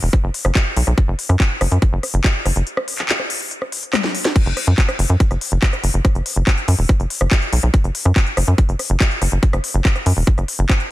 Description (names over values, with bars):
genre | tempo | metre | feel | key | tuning
psychedelic trance | 142 BPM | 4/4 | straight | unclear | A4 = 439 Hz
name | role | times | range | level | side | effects
tight sequencer bass | bass | 0.0-10.7 s | E1 to F#2 | -16 LUFS | equal | none
drum and bass drum kit | drums | 0.0-10.9 s | crash cymbal, handclaps, hi-hat, rim click, snare drum, toms | -21 LUFS | left 1 dB | none
electronic kick drum | drums | 0.1-10.8 s | none | -15 LUFS | equal | none
room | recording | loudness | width
digital ambience | dense, heavily limited modern master | -15 LUFS | side -16 dB against mid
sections
0.0-4.4 A section; 4.4-10.9 B section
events
break 2.7-4.4; drum fill 3.9-4.4; drop 4.4-10.9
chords
none